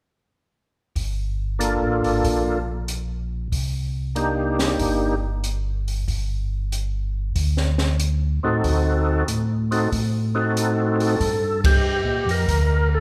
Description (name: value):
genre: soul jazz organ trio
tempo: 94 BPM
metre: 4/4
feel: swing 69% on 8ths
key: G minor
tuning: A4 = 442 Hz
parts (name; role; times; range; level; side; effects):
- mellow tonewheel organ; bass; 1.0-13.0 s; G1 to Bb2; -26 LUFS; equal; chorus vibrato, slow rotary speaker
- open jazz drum kit; drums; 1.0-12.7 s; hi-hat, kick drum, ride cymbal, snare drum; -28 LUFS; equal; none
- overdriven tonewheel organ; melody; 1.6-13.0 s; Bb3 to Bb4; -25 LUFS; equal; slow rotary speaker, chorus vibrato
room: wet recital hall reverb, RT60 1.4 s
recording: recorded in a church or concert hall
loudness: -22 LUFS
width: mono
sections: 1.0-11.2 A section; 11.2-13.0 B section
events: band accent 11.5-11.8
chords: 1.0 Gm9; 3.5 Cm9; 6.1 Gsus2; 8.6 D7b9; 11.2 Gm7